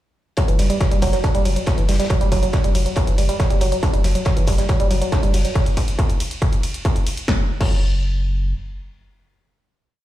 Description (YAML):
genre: driving peak-time techno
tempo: 139 BPM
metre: 4/4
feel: straight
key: unclear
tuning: A4 = 440 Hz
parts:
  - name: woody wave-folded pluck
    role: riff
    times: 0.4-7.7 s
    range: E3 to D4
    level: -23 LUFS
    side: right 2 dB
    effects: chorus, sidechain pumping, tape echo
  - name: cloth-damped thuddy drum kit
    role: drums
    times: 0.4-5.4 s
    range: hi-hat, snare drum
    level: -36 LUFS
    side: left 2 dB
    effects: sidechain pumping on hats, high-pass filter on hats, high-pass filter on snare, high-pass filter on room
  - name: electronic kick drum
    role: drums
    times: 0.4-7.7 s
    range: none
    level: -19 LUFS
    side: equal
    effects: distortion, overdrive
  - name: punchy analog drum machine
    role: drums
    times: 0.4-7.7 s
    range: crash cymbal, hi-hat, ride cymbal, snare drum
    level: -30 LUFS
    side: equal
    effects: none
  - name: saturated sub bass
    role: bass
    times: 0.5-8.5 s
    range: F#1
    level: -21 LUFS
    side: equal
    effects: tube saturation, sidechain pumping, low-pass filter
room: small room ambience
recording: played on a big sound system in a bare room, large studio reverb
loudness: -17 LUFS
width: side -14 dB against mid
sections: 0.4-7.3 drop; 7.3-10.0 final note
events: drop 0.4-7.3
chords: none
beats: | 0.38 0.81 1.24 1.67 | 2.10 2.53 2.96 3.40 | 3.83 4.26 4.69 5.12 | 5.55 5.99 6.42 6.85 | 7.28 7.71 8.14